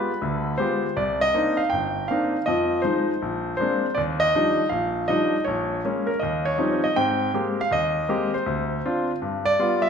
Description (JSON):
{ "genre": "solo jazz", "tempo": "160 BPM", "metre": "4/4", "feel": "swing 66% on 8ths", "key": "Eb major", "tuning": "A4 = 440 Hz", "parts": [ { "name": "clear grand piano", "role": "solo", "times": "0.0-9.9 s", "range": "G1 to G5", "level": "-21 LUFS", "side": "equal", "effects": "none" } ], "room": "moderate recital hall reverb, RT60 1.4 s", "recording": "minimal, uncompressed stereo recording", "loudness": "-21 LUFS", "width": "side -6 dB against mid", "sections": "0.0-7.0 A section; 7.0-9.9 B section", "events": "none", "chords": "0.0 G7b9; 1.0 Cm9; 2.5 Fm7; 3.2 Bb9; 4.0 Ebmaj9; 5.5 Bbm7; 6.2 Eb13; 7.0 Abmaj9; 8.5 Dm7; 9.2 G7", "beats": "0.22 0.59 | 0.97 1.34 1.72 2.09 | 2.46 2.84 3.21 3.59 | 3.96 4.33 4.71 5.08 | 5.46 5.83 6.21 6.58 | 6.96 7.33 7.71 8.08 | 8.45 8.83 9.20 9.58" }